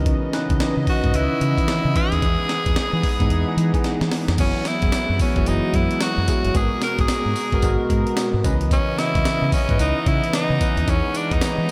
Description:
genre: R&B, new jack swing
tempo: 111 BPM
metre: 4/4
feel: swing 62% on 16ths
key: unclear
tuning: A4 = 439 Hz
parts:
  - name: bell-like tine electric piano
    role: accompaniment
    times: 0.0-11.7 s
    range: D#3 to D#5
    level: -27 LUFS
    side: equal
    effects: phaser
  - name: dark studio string section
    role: sustained chords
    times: 0.0-11.7 s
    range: B2 to D#5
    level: -31 LUFS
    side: equal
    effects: none
  - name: deep dub fingered electric bass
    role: bass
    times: 0.0-11.7 s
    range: F#1 to E3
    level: -25 LUFS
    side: equal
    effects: none
  - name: breakbeat sampler-style drum kit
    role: drums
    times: 0.1-11.7 s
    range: crash cymbal, hi-hat, kick drum, snare drum, tambourine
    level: -25 LUFS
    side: equal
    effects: none
  - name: raspy tenor saxophone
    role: melody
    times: 0.9-11.7 s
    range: C#4 to A#4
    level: -27 LUFS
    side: equal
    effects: none
room: moderate cathedral reverb, RT60 5.4 s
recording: dreamy mix soaked in reverb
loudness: -20 LUFS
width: mono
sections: 0.0-4.4 A section; 4.4-11.7 B section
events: drum fill 3.8-4.4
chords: 0.0 C#m9; 2.2 Emaj7; 4.4 F#9sus4; 6.5 G#m9; 8.4 C#m9; 10.9 Emaj7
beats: | 0.06 0.60 1.14 1.68 | 2.22 2.77 3.31 3.85 | 4.39 4.93 5.47 6.01 | 6.55 7.09 7.63 8.17 | 8.71 9.25 9.79 10.33 | 10.87 11.41

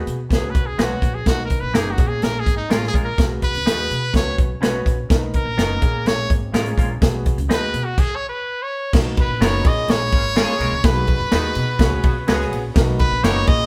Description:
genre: uptempo 1960s-style soul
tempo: 125 BPM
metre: 4/4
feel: straight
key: unclear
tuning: A4 = 440 Hz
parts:
  - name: warm concert grand piano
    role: accompaniment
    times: 0.0-13.7 s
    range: A#3 to B4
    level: -31 LUFS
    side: equal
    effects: none
  - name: upright bass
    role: bass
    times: 0.1-13.7 s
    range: F#1 to B2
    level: -27 LUFS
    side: equal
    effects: none
  - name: natural country drum kit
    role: drums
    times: 0.1-13.6 s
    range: crash cymbal, hi-hat, kick drum, ride cymbal, snare drum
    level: -21 LUFS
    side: equal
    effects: none
  - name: brilliant trumpet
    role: melody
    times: 0.3-13.7 s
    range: D#4 to D#5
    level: -26 LUFS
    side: equal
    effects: none
  - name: semi-hollow electric guitar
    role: stabs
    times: 0.8-13.4 s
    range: F#3 to B4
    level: -31 LUFS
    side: equal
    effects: none
  - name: glockenspiel with rubber mallets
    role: second line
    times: 9.2-13.7 s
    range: B5 to D#6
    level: -34 LUFS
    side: equal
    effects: none
  - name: warm horn section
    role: second line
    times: 9.4-13.3 s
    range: C#3 to G#4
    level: -34 LUFS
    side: equal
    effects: none
room: moderate studio reverb, RT60 0.9 s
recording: band playing live in one room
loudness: -19 LUFS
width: mono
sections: 0.0-8.9 A section; 8.9-13.7 B section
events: trumpet solo 0.0-8.9; stop 8.0-8.9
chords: 0.3 C#7sus4; 1.3 Bmaj7; 2.0 A#m7; 3.2 G#m7/B; 4.1 C#7sus4; 5.1 Bmaj7; 5.8 A#m7; 7.0 G#m7/B; 8.0 N.C.; 8.9 Bmaj7; 9.7 A#m7; 10.8 G#m7/B; 11.8 C#7sus4; 12.8 Bmaj7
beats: 0.31 0.79 | 1.27 1.75 2.23 2.71 | 3.19 3.66 4.14 4.62 | 5.10 5.58 6.06 6.54 | 7.02 7.50 7.98 8.46 | 8.94 9.41 9.89 10.37 | 10.85 11.33 11.80 12.28 | 12.76 13.24

